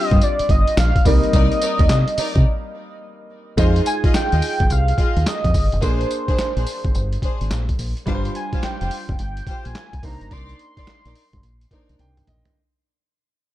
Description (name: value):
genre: R&B, new jack swing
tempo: 107 BPM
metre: 4/4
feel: swing 65% on 16ths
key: C minor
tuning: A4 = 439 Hz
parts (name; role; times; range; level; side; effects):
- octave-doubled lead; melody; 0.0-12.0 s; C5 to C6; -24 LUFS; equal; chorus, tape echo
- bright concert grand piano; accompaniment; 0.0-12.6 s; G3 to G5; -27 LUFS; right 2 dB; none
- warm chamber string section; stabs; 0.0-11.9 s; D4 to Eb5; -30 LUFS; left 3 dB; none
- deep dub fingered electric bass; bass; 0.1-12.4 s; F1 to C3; -20 LUFS; equal; none
- boom bap sampler-style drum kit; drums; 0.1-12.5 s; handclaps, hi-hat, kick drum, snare drum, tambourine, toms; -20 LUFS; equal; none
room: little or no reverb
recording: dark, warm production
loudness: -16 LUFS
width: side -14 dB against mid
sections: 0.0-3.6 A section; 3.6-12.6 B section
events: break 2.5-3.6; fade-out 3.6-12.6; grand piano fill 11.7-12.6; drum fill 12.0-12.6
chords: 0.0 G7sus4; 1.1 Cm9; 3.6 Fm7; 5.8 Bb9; 8.1 G7sus4; 10.0 Cm9